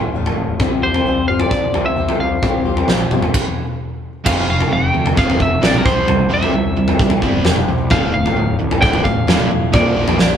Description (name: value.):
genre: quiet-loud alternative rock.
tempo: 131 BPM.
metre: 4/4.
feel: straight.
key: unclear.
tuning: A4 = 440 Hz.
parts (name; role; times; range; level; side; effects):
fingerpicked swing-style acoustic guitar; arpeggios; 0.0-10.4 s; D2 to C5; -24 LUFS; left 5 dB; none.
fuzz picked electric bass; bass; 0.0-10.4 s; D1 to D2; -23 LUFS; right 1 dB; overdrive.
big rock drum kit; drums; 0.3-10.3 s; crash cymbal, kick drum, snare drum, toms; -17 LUFS; equal; none.
twelve-string electric guitar; melody; 0.8-10.4 s; Bb4 to G5; -20 LUFS; equal; none.
cranked stack guitar; riff; 4.2-10.4 s; D2 to C4; -19 LUFS; right 2 dB; overdrive.
room: moderate large studio reverb, RT60 0.9 s.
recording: band playing live in one room.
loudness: -13 LUFS.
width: side -8 dB against mid.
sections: 0.0-4.3 A section; 4.3-10.4 B section.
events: stop 3.3-4.3.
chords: 0.0 Dm; 0.6 Csus4; 4.3 F; 5.9 C; 7.9 Dmadd9; 9.7 Bb.